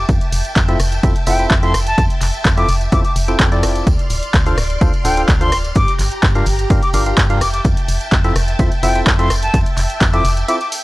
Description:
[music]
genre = piano house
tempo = 127 BPM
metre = 4/4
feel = straight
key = F major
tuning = A4 = 438 Hz
[part]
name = silver concert flute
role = melody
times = 0.0-10.7 s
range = G5 to D6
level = -21 LUFS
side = left 1 dB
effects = analog delay
[part]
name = string machine, violins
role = sustained chords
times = 0.0-10.8 s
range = G4 to F6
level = -26 LUFS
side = equal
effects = ensemble chorus, sidechain pumping
[part]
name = organ-like FM bass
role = bass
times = 0.0-10.4 s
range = D1 to G2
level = -18 LUFS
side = equal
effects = tube saturation, sidechain pumping
[part]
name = electronic kick drum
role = drums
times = 0.1-10.1 s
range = none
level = -16 LUFS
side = equal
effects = none
[part]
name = punchy analog drum machine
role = drums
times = 0.1-10.8 s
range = handclaps, hi-hat, rim click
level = -21 LUFS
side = equal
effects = none
[part]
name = tambourine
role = percussion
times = 0.1-10.8 s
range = none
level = -33 LUFS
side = right 1 dB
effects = none
[part]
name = percussive organ stab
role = riff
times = 0.7-10.6 s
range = C4 to G5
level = -22 LUFS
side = equal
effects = chorus, sidechain pumping
[sound]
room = little or no reverb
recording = dry, gritty hardware recording, transformer saturation, cassette tape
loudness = -13 LUFS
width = side -19 dB against mid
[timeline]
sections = 0.0-10.8 A section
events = break 10.5-10.8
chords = 0.0 Fmaj7; 3.9 Dm7; 5.8 Gm7; 7.4 Fmaj7

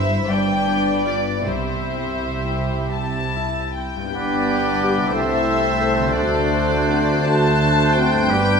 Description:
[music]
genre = classical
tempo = 39-62 BPM (dotted quarters)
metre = 6/8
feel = rubato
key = C major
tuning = A4 = 440 Hz
[part]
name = rich studio violin section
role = melody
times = 0.0-8.6 s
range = C5 to A5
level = -24 LUFS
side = left 2 dB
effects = none
[part]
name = warm studio violin section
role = second line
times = 0.0-8.6 s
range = D4 to D5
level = -26 LUFS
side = left 3 dB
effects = none
[part]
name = dark studio viola section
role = accompaniment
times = 0.0-8.6 s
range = A3 to E5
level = -25 LUFS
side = right 1 dB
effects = none
[part]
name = concert harp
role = arpeggios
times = 0.0-8.6 s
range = G2 to A4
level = -29 LUFS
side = left 9 dB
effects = none
[part]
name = dark studio cello section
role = bass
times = 0.0-8.6 s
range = G2 to D3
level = -25 LUFS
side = right 3 dB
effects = none
[part]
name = warm studio double bass section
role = bass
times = 0.0-8.6 s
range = G1 to D2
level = -28 LUFS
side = right 3 dB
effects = none
[part]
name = bright oboe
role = second line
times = 4.1-8.6 s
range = B4 to C5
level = -26 LUFS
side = right 1 dB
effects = none
[part]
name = warm clarinet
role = second line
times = 4.1-8.6 s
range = C4 to D4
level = -27 LUFS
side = left 2 dB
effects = none
[part]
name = warm bassoon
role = accompaniment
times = 4.1-8.6 s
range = G3 to B3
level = -26 LUFS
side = right 2 dB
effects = none
[part]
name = small flute group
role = second line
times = 4.2-8.6 s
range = D6 to F#6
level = -26 LUFS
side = equal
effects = none
[part]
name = mellow French horn section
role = sustained chords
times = 4.8-8.1 s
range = B3 to A4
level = -28 LUFS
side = left 4 dB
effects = none
[sound]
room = wet scoring stage reverb, RT60 1.5 s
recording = none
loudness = -17 LUFS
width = side -6 dB against mid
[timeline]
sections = 0.0-4.1 A section; 4.1-8.6 B section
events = none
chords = 0.3 G7; 1.5 C; 4.1 G; 5.1 Am/C; 6.2 D7

